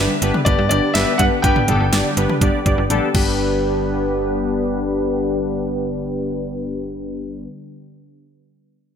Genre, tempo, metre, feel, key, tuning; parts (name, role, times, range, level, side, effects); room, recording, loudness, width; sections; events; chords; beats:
synth-pop; 123 BPM; 4/4; straight; G major; A4 = 438 Hz
clear baby grand piano; melody; 0.0-2.9 s; D5 to G5; -22 LUFS; left 2 dB; low-pass filter, ping-pong delay
analog synth brass; accompaniment; 0.0-7.5 s; B3 to D5; -21 LUFS; left 2 dB; chorus, low-pass filter
lush unison pad; sustained chords; 0.0-7.5 s; D3 to B3; -25 LUFS; equal; chorus, low-pass filter
slap-like FM bass; bass; 0.0-7.5 s; G1 to G2; -24 LUFS; right 1 dB
pop drum kit; drums; 0.2-3.3 s; crash cymbal, hi-hat, kick drum, snare drum, toms; -20 LUFS; equal; gated reverb
moderate lush hall reverb, RT60 2.3 s; bright 1980s-style digital production; -16 LUFS; side -8 dB against mid
0.0-3.4 A section; 3.4-7.3 B section
drum fill 2.9-3.4
0.0 G
0.46 0.95 | 1.44 1.93 2.41 2.90 | 3.39 3.88 4.37 4.85 | 5.34 5.83 6.32 6.80